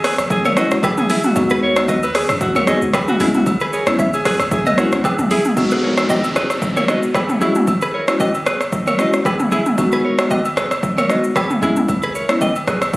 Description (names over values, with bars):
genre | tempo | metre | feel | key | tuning
afrobeats | 114 BPM | 4/4 | swing 55% on 16ths | G# minor | A4 = 441 Hz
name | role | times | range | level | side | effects
edgy alto saxophone | melody | 0.0-5.4 s | F#4 to C#5 | -23 LUFS | equal | none
direct-recorded clean electric guitar | riff | 0.0-12.8 s | E4 to E5 | -21 LUFS | right 1 dB | tape echo
punchy sub bass | bass | 0.0-13.0 s | D#1 to F#2 | -29 LUFS | equal | none
deep house drum kit | drums | 0.0-13.0 s | hi-hat, kick drum, rim click, shaker, toms | -19 LUFS | equal | overdrive
agogo bells and woodblock | percussion | 0.2-12.9 s | none | -23 LUFS | equal | none
bell-like tine electric piano | accompaniment | 0.6-12.5 s | G#3 to F#4 | -19 LUFS | left 1 dB | fast stereo tremolo
downlifter | sound effects | 5.6-9.8 s | none | -27 LUFS | equal | none
room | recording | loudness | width
moderate plate reverb, RT60 1.6 s, digital ambience | recorded on a phone in the room, studio reverb | -14 LUFS | side -20 dB against mid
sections
0.0-5.6 A section; 5.6-13.0 B section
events
none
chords
0.0 E69; 1.4 G#m7/D#; 3.2 C#m7; 5.6 G#m7; 7.4 E69; 9.8 G#m7/D#; 11.6 C#m7